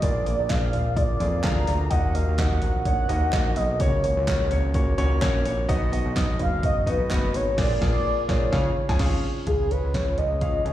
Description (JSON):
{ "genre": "piano-driven pop", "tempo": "127 BPM", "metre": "4/4", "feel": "swing 56% on 16ths", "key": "unclear", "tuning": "A4 = 439 Hz", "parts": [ { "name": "mellow horn-like synth lead", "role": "melody", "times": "0.0-10.7 s", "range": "G#4 to A#5", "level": "-27 LUFS", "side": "equal", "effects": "chorus, phaser, slapback echo, digital delay" }, { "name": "warm upright piano", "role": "accompaniment", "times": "0.0-10.7 s", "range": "A#2 to G#5", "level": "-28 LUFS", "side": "left 1 dB", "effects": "slapback echo" }, { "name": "fat analog bass", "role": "bass", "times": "0.0-10.7 s", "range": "F#1 to E#2", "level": "-26 LUFS", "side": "equal", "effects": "none" }, { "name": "punchy analog drum machine", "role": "drums", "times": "0.0-10.7 s", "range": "crash cymbal, hi-hat, kick drum, snare drum, toms", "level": "-26 LUFS", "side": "equal", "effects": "none" }, { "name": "group handclap", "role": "percussion", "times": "0.5-7.2 s", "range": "none", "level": "-37 LUFS", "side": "right 2 dB", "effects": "slapback echo" } ], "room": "light reverb", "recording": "live gig heard through the venue's PA, recital hall reverb", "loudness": "-21 LUFS", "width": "side -13 dB against mid", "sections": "0.0-9.5 A section; 9.5-10.7 B section", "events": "band accent 7.6-9.5", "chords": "0.0 A#7; 1.9 D#m; 3.8 F#/C#; 5.7 B; 7.6 A#7; 8.5 C#" }